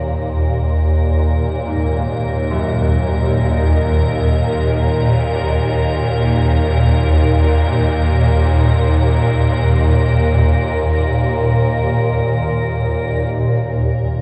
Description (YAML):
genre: dark ambient drone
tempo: free time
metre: none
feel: none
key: Eb minor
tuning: A4 = 439 Hz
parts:
  - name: deep dark ambient pad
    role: sustained chords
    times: 0.1-13.4 s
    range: Bb3 to Bb4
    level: -28 LUFS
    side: equal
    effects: chorus, built-in reverb
  - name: swarming drone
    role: drone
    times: 0.0-14.2 s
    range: Eb2 to Bb2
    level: -16 LUFS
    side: equal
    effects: built-in reverb
  - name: icy glass pad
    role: texture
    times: 0.0-14.2 s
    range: Bb4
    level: -28 LUFS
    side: equal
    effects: chorus, built-in reverb, shimmer reverb
  - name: clear baby grand piano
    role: arpeggios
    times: 1.7-13.4 s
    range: Gb2 to Eb4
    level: -33 LUFS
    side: equal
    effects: none
room: wet cathedral reverb, RT60 6.2 s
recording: cassette tape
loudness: -16 LUFS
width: mono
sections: 0.0-13.3 A section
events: fade-in on ambient pad 0.0-13.3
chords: 0.0 Eb5